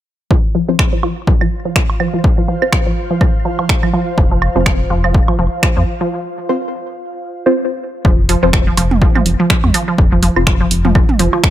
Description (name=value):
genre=minimal techno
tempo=124 BPM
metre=4/4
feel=swing 57% on 16ths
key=unclear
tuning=A4 = 440 Hz
part: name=resonant blip pluck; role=riff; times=0.3-11.4 s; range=F3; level=-18 LUFS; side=right 1 dB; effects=chorus, phaser, sidechain pumping, dub echo
part: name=electronic kick drum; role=drums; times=0.3-11.5 s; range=none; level=-14 LUFS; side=equal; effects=none
part: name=ethereal airy pad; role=texture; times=1.5-6.1 s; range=F4 to F5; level=-26 LUFS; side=equal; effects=ensemble chorus, built-in reverb, sidechain pumping
part: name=filtered dub chord stab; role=stabs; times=0.7-10.4 s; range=C4 to C5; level=-17 LUFS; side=equal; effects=phaser, analog chorus, cassette tape, ping-pong delay
part: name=punchy analog drum machine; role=drums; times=0.8-11.5 s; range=finger snaps, hi-hat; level=-19 LUFS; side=right 2 dB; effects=none
part: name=electronic claves, woodblock and toms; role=percussion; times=0.8-11.4 s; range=none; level=-20 LUFS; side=right 5 dB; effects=ping-pong delay
part: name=rubbery square bass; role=bass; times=4.2-11.3 s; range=F1 to F2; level=-16 LUFS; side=equal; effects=sidechain pumping
room=light reverb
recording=none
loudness=-12 LUFS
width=side -12 dB against mid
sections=0.3-8.0 A section; 8.0-11.5 B section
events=fade-in on ambient pad 0.3-8.0; filter sweep on synth pluck 0.3-8.0; filter sweep on synth stab 0.3-8.0; break 6.1-8.0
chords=0.3 F5